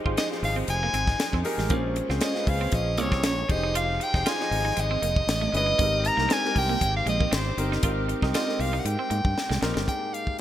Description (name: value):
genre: polished 1980s jazz-funk pop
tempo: 118 BPM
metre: 4/4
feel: swing 54% on 16ths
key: Ab major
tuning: A4 = 438 Hz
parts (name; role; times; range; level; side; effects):
- warm grand piano; accompaniment; 0.0-10.4 s; Ab2 to Eb5; -31 LUFS; left 1 dB; lush chorus
- clear studio string section; sustained chords; 0.0-9.9 s; F3 to G4; -38 LUFS; equal; none
- electric guitar at the edge of break-up; riff; 0.1-9.8 s; G3 to F4; -34 LUFS; right 6 dB; wide subtle chorus
- modern bright fingered electric bass; bass; 0.1-9.8 s; F1 to Ab2; -28 LUFS; equal; none
- tight funk drum kit; drums; 0.1-10.4 s; crash cymbal, hi-hat, kick drum, snare drum; -28 LUFS; equal; gated reverb
- bright soprano saxophone; melody; 0.2-10.4 s; C5 to Bb5; -27 LUFS; equal; none
room: light reverb, small room ambience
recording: bright 1980s-style digital production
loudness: -23 LUFS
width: side -12 dB against mid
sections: 0.0-9.9 A section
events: drum fill 9.4-9.9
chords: 0.0 Fm7; 1.7 Bbm7; 3.5 Fm7; 5.3 Amaj7; 5.8 Abmaj7; 7.8 Abmaj9; 9.9 Abmaj7sus2